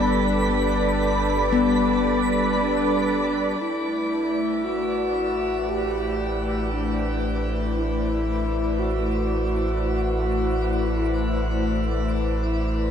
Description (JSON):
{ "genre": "ambient", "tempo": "58 BPM", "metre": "4/4", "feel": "straight", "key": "unclear", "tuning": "A4 = 439 Hz", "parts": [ { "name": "warm analog pad", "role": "sustained chords", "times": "0.0-12.9 s", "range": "G3 to D5", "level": "-25 LUFS", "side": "equal", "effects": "chorus" }, { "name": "handpan", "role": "arpeggios", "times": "0.0-4.1 s", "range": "B3", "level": "-26 LUFS", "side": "left 6 dB", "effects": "diffuse ambient delay" }, { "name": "warm sub bass", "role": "bass", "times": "0.0-12.9 s", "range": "G1 to A1", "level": "-28 LUFS", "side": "equal", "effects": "none" }, { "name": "twinkling granular texture", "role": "texture", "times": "0.0-12.9 s", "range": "B5 to D6", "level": "-33 LUFS", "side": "right 1 dB", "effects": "built-in reverb" }, { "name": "wooden-headed alto flute", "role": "melody", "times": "2.6-11.6 s", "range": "D4 to G4", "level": "-26 LUFS", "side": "equal", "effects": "diffuse ambient delay" } ], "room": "wet shimmer reverb, RT60 7.1 s", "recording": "dark, warm production", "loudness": "-21 LUFS", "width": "side -8 dB against mid", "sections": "0.0-3.6 A section; 3.6-12.9 B section", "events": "fade-in on synth texture 3.6-12.9; filter sweep on analog synth pad 3.6-12.9", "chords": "0.0 G; 3.6 Am" }